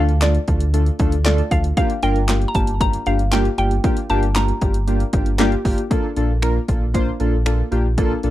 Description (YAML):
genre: dance-pop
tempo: 116 BPM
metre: 4/4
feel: straight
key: Bb major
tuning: A4 = 439 Hz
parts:
  - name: mallet-like synth pluck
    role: melody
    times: 0.0-5.4 s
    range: D5 to Bb5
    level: -24 LUFS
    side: equal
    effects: chorus, tape echo
  - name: warm analog keys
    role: accompaniment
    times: 0.0-8.3 s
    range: A3 to C5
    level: -22 LUFS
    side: left 1 dB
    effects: chorus, tremolo, sidechain pumping
  - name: sub bass with octave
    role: bass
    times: 0.0-8.3 s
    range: G1 to D2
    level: -19 LUFS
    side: equal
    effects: sidechain pumping
  - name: house drum kit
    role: drums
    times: 0.1-8.3 s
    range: finger snaps, handclaps, hi-hat, kick drum, snare drum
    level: -21 LUFS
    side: equal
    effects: none
room: little or no reverb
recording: dry, close 1970s-style studio recording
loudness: -16 LUFS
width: side -14 dB against mid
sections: 0.0-5.9 A section; 5.9-8.3 B section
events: none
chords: 0.0 Dm; 1.8 Gm7; 5.9 Bbmaj7